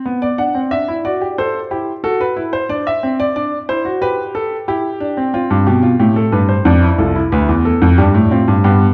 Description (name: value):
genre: classical, baroque-style 4-part fugue for grand piano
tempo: 91 BPM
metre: 4/4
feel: straight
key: unclear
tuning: A4 = 441 Hz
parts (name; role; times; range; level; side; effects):
- warm grand piano; solo; 0.0-8.9 s; C2 to F#5; -15 LUFS; equal; none
room: wet recital hall reverb, RT60 1.6 s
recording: dark, warm production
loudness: -15 LUFS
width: mono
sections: 0.0-8.9 A section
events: none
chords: 0.1 G/B (rootless); 1.4 Am; 2.7 D7; 4.0 G; 5.3 C5; 6.7 Dm; 8.0 G7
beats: | 0.06 0.72 1.37 2.03 | 2.69 3.36 4.01 4.67 | 5.33 5.99 6.66 7.31 | 7.97 8.63